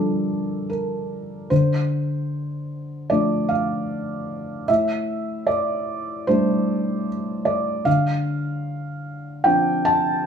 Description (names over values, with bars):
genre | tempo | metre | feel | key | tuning
neoclassical minimalist piano | 75 BPM | 4/4 | rubato | D minor | A4 = 439 Hz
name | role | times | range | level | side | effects
felt-muted upright piano | solo | 0.0-10.3 s | A2 to A5 | -20 LUFS | equal | none
room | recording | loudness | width
moderate large studio reverb, RT60 1.1 s | band playing live in one room, small room ambience | -20 LUFS | side -7 dB against mid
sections
0.0-10.3 A section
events
none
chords
0.0 Bb6/D; 1.5 Dm7; 4.7 A7sus4; 7.9 Dm7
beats
0.70 | 1.51 2.31 3.11 3.90 | 4.68 5.48 6.28 7.07 | 7.86 8.66 9.46 10.26